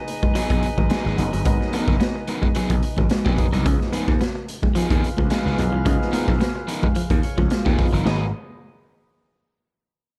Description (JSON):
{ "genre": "funk", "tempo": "109 BPM", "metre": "4/4", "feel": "straight", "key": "G# dorian", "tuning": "A4 = 440 Hz", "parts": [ { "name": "clear horn section", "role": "second line", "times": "0.0-8.3 s", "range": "B3 to E#5", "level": "-34 LUFS", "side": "equal", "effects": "none" }, { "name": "raw garage drum kit", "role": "drums", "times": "0.1-8.2 s", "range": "china cymbal, hi-hat, kick drum, snare drum", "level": "-24 LUFS", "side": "equal", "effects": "none" }, { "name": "congas", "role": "percussion", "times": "0.1-8.3 s", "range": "none", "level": "-34 LUFS", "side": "equal", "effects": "none" }, { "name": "electric guitar at the edge of break-up", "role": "riff", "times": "0.2-8.2 s", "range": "D#3 to C#4", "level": "-30 LUFS", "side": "equal", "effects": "none" }, { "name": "crunchy overdriven guitar", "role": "accompaniment", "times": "0.4-8.2 s", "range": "E#3 to A#4", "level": "-31 LUFS", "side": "equal", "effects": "none" }, { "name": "gritty slap bass", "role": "bass", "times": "0.5-8.3 s", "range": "F#1 to D#2", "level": "-26 LUFS", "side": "equal", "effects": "overdrive" }, { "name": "percussive tonewheel organ", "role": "stabs", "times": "1.2-8.3 s", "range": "E3 to C#5", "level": "-32 LUFS", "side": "equal", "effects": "slow rotary speaker" } ], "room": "small room ambience", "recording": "dark, warm production", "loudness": "-21 LUFS", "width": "mono", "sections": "0.0-8.1 A section; 8.1-10.2 B section", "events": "tonewheel organ fill 7.0-8.1", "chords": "0.0 G#m7; 3.7 C#9; 8.1 G#m7", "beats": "0.36 0.91 | 1.46 2.01 2.56 3.11 | 3.66 4.21 4.76 5.31 | 5.86 6.41 6.96 7.51 | 8.06" }